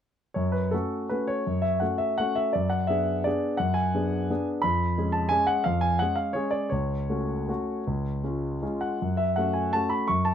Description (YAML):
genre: classical, piano waltz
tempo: 149-185 BPM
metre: 3/4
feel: rubato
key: F# minor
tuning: A4 = 438 Hz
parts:
  - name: warm concert grand piano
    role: solo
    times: 0.3-10.3 s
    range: C#2 to C#6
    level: -24 LUFS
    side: equal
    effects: none
room: light reverb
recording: dark, warm production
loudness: -24 LUFS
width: side -9 dB against mid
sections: 0.4-10.3 A section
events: none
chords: 0.4 F#m; 2.5 G#m7b5/F#; 4.6 C#7/E#; 6.7 F#m/C#; 7.9 C#; 9.0 F#m